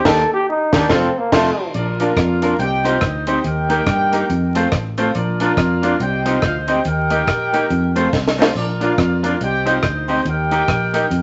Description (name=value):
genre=ska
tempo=141 BPM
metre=4/4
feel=swing 60% on 8ths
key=Bb major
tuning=A4 = 440 Hz
part: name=clear trombone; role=melody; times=0.0-1.7 s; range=A3 to A4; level=-20 LUFS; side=equal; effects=none
part: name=clean electric guitar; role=accompaniment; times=0.1-11.1 s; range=A3 to Bb4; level=-24 LUFS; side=equal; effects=none
part: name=tack piano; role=stabs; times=0.1-11.1 s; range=A3 to Eb5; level=-26 LUFS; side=equal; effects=none
part: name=fingered electric bass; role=bass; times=0.1-11.2 s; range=F1 to G2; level=-24 LUFS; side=equal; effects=none
part: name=deep reggae drum kit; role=drums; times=0.1-11.2 s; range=crash cymbal, hi-hat, kick drum, rim click, snare drum, splash cymbal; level=-22 LUFS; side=equal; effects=none
part: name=dark horn section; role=melody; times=1.7-11.2 s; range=D4 to G5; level=-23 LUFS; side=equal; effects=none
part: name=cabasa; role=percussion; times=1.7-11.2 s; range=none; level=-54 LUFS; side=equal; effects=none
room=wet large studio reverb, RT60 0.8 s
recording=vinyl crackle, nothing above 7.9 kHz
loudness=-18 LUFS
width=mono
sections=0.0-1.8 A section; 1.8-11.2 B section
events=trombone solo 0.0-1.8; band accent 0.1-1.8; drum fill 8.1-8.6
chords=0.1 Eb; 0.9 F; 1.8 Bb; 2.6 Cm; 3.4 Eb; 4.3 F; 5.1 Bb; 6.0 Cm; 6.9 Eb; 7.7 F; 8.6 Bb; 9.4 Cm; 10.3 Eb